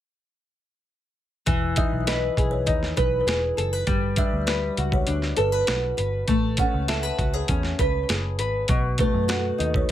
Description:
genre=indie pop, bedroom pop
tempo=100 BPM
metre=4/4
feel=straight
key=unclear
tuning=A4 = 441 Hz
part: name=nylon-string guitar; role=accompaniment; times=1.5-9.9 s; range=B2 to B4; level=-26 LUFS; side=left 4 dB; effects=lush chorus, warbly pitch drift, plate reverb
part: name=vintage muted picked electric bass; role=bass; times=1.5-9.8 s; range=E1 to F#2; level=-27 LUFS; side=equal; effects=none
part: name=boom bap sampler-style drum kit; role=drums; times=1.5-9.9 s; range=hi-hat, kick drum, snare drum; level=-25 LUFS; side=equal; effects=none
part: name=kalimba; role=second line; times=1.8-9.9 s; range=A4 to F#5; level=-28 LUFS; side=right 4 dB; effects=lush chorus, ping-pong delay, plate reverb
room=light reverb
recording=none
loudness=-21 LUFS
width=side -12 dB against mid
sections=1.5-9.9 A section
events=none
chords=1.5 Emaj7; 3.9 Gmaj7; 6.3 Amaj9; 8.7 B7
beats=| 1.47 2.07 2.67 3.28 | 3.88 4.48 5.08 5.68 | 6.29 6.89 7.49 8.09 | 8.69 9.30 9.90

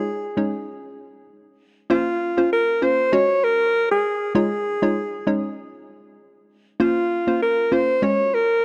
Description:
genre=afrobeats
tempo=98 BPM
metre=4/4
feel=swing 55% on 16ths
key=unclear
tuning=A4 = 437 Hz
part: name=breathy alto saxophone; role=melody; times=0.0-8.6 s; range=F4 to Db5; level=-22 LUFS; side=equal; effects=delay
part: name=hollow square pluck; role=accompaniment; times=0.0-8.6 s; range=Ab3 to Db5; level=-25 LUFS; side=equal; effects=chorus
room=light reverb, studio reverb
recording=none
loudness=-21 LUFS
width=mono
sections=0.0-1.9 A section; 1.9-8.6 B section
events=none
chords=0.4 Absus4; 1.9 Bbmadd9; 3.1 Gbsus2; 4.4 Dbadd9; 5.3 Absus4; 6.8 Bbmadd9; 8.0 Gbsus2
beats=0.07 0.68 1.29 | 1.90 2.52 3.13 3.74 | 4.35 4.96 5.58 6.19 | 6.80 7.41 8.03 8.64

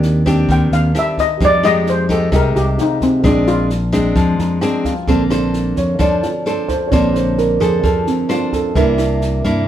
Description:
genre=bossa nova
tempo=131 BPM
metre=4/4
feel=straight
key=Bb major from 5.1 s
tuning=A4 = 440 Hz
part: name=dark baby grand piano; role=accompaniment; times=0.0-9.7 s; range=D3 to Bb5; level=-19 LUFS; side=right 4 dB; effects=none
part: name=nylon-string guitar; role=accompaniment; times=0.0-9.7 s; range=Bb2 to C5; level=-19 LUFS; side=left 1 dB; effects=none
part: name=fingered electric bass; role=bass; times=0.0-9.7 s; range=Bb1 to G2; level=-18 LUFS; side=equal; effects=none
part: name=compact cocktail drum kit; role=drums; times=0.0-9.5 s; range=kick drum, rim click, snare drum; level=-22 LUFS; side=equal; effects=none
part: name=steel pan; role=melody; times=0.5-3.6 s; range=C4 to G5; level=-16 LUFS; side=left 2 dB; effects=none
room=moderate studio reverb, RT60 0.8 s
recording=heard from further back in the room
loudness=-13 LUFS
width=side -11 dB against mid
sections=0.0-5.1 A section; 5.1-9.7 A section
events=steel pan solo 0.0-5.1; grand piano fill 4.2-5.1; grand piano solo 5.1-9.7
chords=0.0 Ebmaj13; 1.4 Fm9; 3.2 Bb9; 5.1 Bbmaj9; 8.8 C9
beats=0.03 0.48 0.94 | 1.40 1.86 2.32 2.78 | 3.24 3.70 4.16 4.62 | 5.08 5.54 6.00 6.46 | 6.92 7.38 7.84 8.30 | 8.76 9.22 9.68

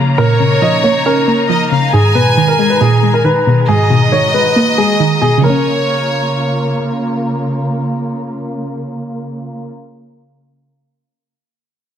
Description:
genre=hip hop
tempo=137 BPM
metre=4/4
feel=half-time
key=Bb phrygian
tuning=A4 = 440 Hz
part: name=dark concert grand piano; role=melody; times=0.0-6.7 s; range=Ab4 to Eb5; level=-16 LUFS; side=left 1 dB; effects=low-pass filter, digital delay
part: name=soft round pluck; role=accompaniment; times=0.0-10.2 s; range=Ab2 to Db4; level=-13 LUFS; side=right 1 dB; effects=chorus, low-pass filter
part: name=rich studio string section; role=sustained chords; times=0.0-9.7 s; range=Db3 to Bb5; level=-19 LUFS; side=equal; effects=low-pass filter
part: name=warm studio violin section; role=second line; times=0.2-6.7 s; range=Db5 to Ab5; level=-17 LUFS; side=right 1 dB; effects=digital delay
room=light reverb, small room ambience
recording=dense, heavily limited modern master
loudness=-11 LUFS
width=side -9 dB against mid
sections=0.0-5.4 A section; 5.4-8.9 B section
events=filter sweep 0.0-5.4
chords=0.0 Bbm; 1.9 Abmadd9; 5.4 Bbm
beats=| 0.18 0.62 1.06 1.49 | 1.93 2.37 2.81 3.25 | 3.68 4.12 4.56 5.00 | 5.43 5.87 6.31 6.75 | 7.19 7.62 8.06 8.50

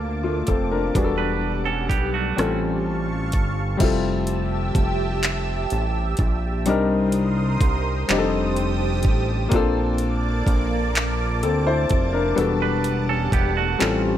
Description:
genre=slow six-eight R&B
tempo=42 BPM (dotted quarters)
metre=6/8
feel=straight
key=F major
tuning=A4 = 441 Hz
part: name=clear grand piano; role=accompaniment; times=0.0-14.2 s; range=G3 to C5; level=-24 LUFS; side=left 4 dB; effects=none
part: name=lush unison pad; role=sustained chords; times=0.0-14.2 s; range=G3 to E6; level=-29 LUFS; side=right 2 dB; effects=chorus, phaser
part: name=fat analog bass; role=bass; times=0.0-14.2 s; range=E1 to D2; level=-24 LUFS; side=right 1 dB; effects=none
part: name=smooth R&B drum kit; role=drums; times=0.5-14.0 s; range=crash cymbal, handclaps, hi-hat, kick drum, rim click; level=-23 LUFS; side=right 1 dB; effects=none
part: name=twangy electric guitar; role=second line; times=1.2-2.6, 12.6-14.0 s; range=A3 to B4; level=-26 LUFS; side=right 9 dB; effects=none
room=light reverb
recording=none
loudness=-19 LUFS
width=side -11 dB against mid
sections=0.0-3.8 A section; 3.8-14.2 B section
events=none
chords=0.0 Bbmaj7; 0.9 Em11; 2.4 A7alt; 3.8 Fmaj9; 6.7 Cm9; 8.1 F13; 9.5 Bbmaj7; 12.4 Em11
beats=| 0.95 2.38 | 3.80 5.23 | 6.66 8.09 | 9.52 10.95 | 12.38 13.80

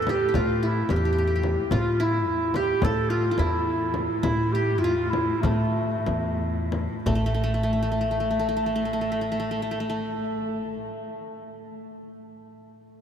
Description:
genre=Turkish makam ensemble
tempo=175-218 BPM (eighths)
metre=9/8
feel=straight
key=unclear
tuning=A4 = 441 Hz
part: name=dark clarinet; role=melody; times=0.0-10.8 s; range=A3 to A4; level=-27 LUFS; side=equal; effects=tape echo
part: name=qanun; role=second line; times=0.0-11.7 s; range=A3 to B4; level=-30 LUFS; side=right 1 dB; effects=tape echo
part: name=upright bass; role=bass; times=0.0-10.9 s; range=A1 to A2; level=-28 LUFS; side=equal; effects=none
part: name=clear cello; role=drone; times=0.0-10.9 s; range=A2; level=-36 LUFS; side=left 1 dB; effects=stereo widening
part: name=frame drum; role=percussion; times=0.1-7.4 s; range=none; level=-32 LUFS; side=left 2 dB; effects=none
room=wet cathedral reverb, RT60 6.4 s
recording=dreamy mix soaked in reverb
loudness=-22 LUFS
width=side -8 dB against mid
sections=0.0-7.1 A section; 7.1-10.2 B section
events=slowing down 2.3-7.1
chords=none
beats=0.08 0.35 0.63 0.90 1.18 1.45 | 1.73 2.00 2.27 2.55 2.83 3.10 3.38 3.67 3.95 | 4.24 4.53 4.83 5.13 5.44 5.75 6.07 6.39 6.72 | 7.06 7.41 7.75 8.09 8.44 8.78 9.12 9.47 9.81

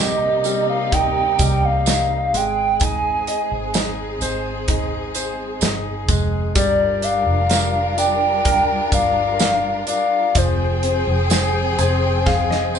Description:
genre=pop ballad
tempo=63 BPM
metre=4/4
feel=straight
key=unclear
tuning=A4 = 442 Hz
part: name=hollow clarinet-like synth lead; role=melody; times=0.0-12.8 s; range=C5 to Ab5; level=-20 LUFS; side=right 1 dB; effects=chorus
part: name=bright concert grand piano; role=accompaniment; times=0.0-12.8 s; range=C3 to Ab5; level=-24 LUFS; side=left 4 dB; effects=none
part: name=warm studio string section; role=sustained chords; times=0.0-12.8 s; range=C3 to G5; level=-26 LUFS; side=left 1 dB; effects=none
part: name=vintage muted fingered electric bass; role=bass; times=0.0-12.8 s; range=F1 to C2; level=-24 LUFS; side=right 1 dB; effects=none
part: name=tambourine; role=percussion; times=0.4-12.8 s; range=none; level=-28 LUFS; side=right 6 dB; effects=none
part: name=modern studio drum kit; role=drums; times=0.5-12.7 s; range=hi-hat, kick drum, snare drum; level=-22 LUFS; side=right 1 dB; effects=none
room=wet studio reverb, RT60 0.6 s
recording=band playing live in one room, nothing above 10.5 kHz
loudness=-16 LUFS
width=side -7 dB against mid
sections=0.0-12.8 A section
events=grand piano fill 11.3-12.8; drum fill 12.3-12.8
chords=0.0 Cm7; 2.3 Ab; 6.6 Gm7; 10.4 Fmadd9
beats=0.93 1.87 | 2.81 3.75 4.69 5.62 | 6.56 7.51 8.46 9.40 | 10.36 11.31 12.27

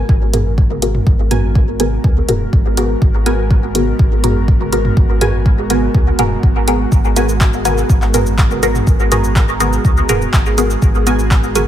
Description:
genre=dub techno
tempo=123 BPM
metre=4/4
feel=straight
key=G# minor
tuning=A4 = 440 Hz
part: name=airy breathy pad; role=sustained chords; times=0.0-11.7 s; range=G#3 to A#4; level=-22 LUFS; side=right 2 dB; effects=chorus, sidechain pumping
part: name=soft dub sub bass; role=bass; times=0.0-11.7 s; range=D#1 to C#2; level=-18 LUFS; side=equal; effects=sidechain pumping
part: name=electronic kick drum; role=drums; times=0.1-11.4 s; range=none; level=-13 LUFS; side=equal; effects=overdrive, small room ambience
part: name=filtered dub chord stab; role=stabs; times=0.3-11.7 s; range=B3 to A#4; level=-18 LUFS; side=equal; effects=phaser, cassette tape, sidechain pumping, dub echo
part: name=punchy analog drum machine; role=drums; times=0.3-11.7 s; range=handclaps, hi-hat, shaker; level=-21 LUFS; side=equal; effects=small room ambience, dub echo
part: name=electronic toms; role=percussion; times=0.3-11.7 s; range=none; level=-23 LUFS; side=left 1 dB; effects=sidechain pumping on toms, small room ambience
part: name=filtered dub chord stab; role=riff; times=1.3-11.7 s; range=F#4 to G#5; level=-26 LUFS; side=right 3 dB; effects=chorus, sidechain pumping, dub echo
room=little or no reverb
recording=none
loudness=-11 LUFS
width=side -11 dB against mid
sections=0.0-11.7 A section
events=none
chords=0.0 G#m9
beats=0.09 0.58 | 1.07 1.55 2.04 2.53 | 3.02 3.51 3.99 4.48 | 4.97 5.46 5.95 6.43 | 6.92 7.41 7.90 8.38 | 8.87 9.36 9.85 10.34 | 10.82 11.31

